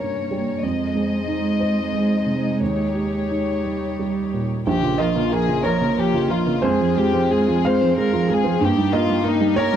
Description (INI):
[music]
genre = neoclassical piano and strings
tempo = 60 BPM (dotted quarters)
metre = 6/8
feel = uneven beats, rubato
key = F minor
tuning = A4 = 440 Hz
[part]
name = warm chamber violin section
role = melody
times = 0.0-9.8 s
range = Eb4 to Eb5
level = -24 LUFS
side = left 9 dB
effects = none
[part]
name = dark cello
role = second line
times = 0.0-9.8 s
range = Db3 to Bb3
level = -24 LUFS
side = right 3 dB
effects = none
[part]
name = warm upright piano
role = accompaniment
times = 0.0-9.8 s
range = Bb1 to F5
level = -22 LUFS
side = right 3 dB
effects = none
[part]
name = warm chamber string section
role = sustained chords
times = 0.0-9.8 s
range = G3 to Db5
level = -29 LUFS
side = left 2 dB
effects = none
[sound]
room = small room ambience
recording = dry, close 1970s-style studio recording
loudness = -18 LUFS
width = side -9 dB against mid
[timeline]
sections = 0.0-4.7 A section; 4.7-9.8 B section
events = none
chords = 0.0 Gdim; 0.6 Fm7; 2.6 Eb7; 4.7 Bbm; 6.6 Fm; 8.6 Eb/G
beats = | 0.63 1.59 | 2.60 3.64 | 4.66 5.64 | 6.62 7.64 | 8.60 9.56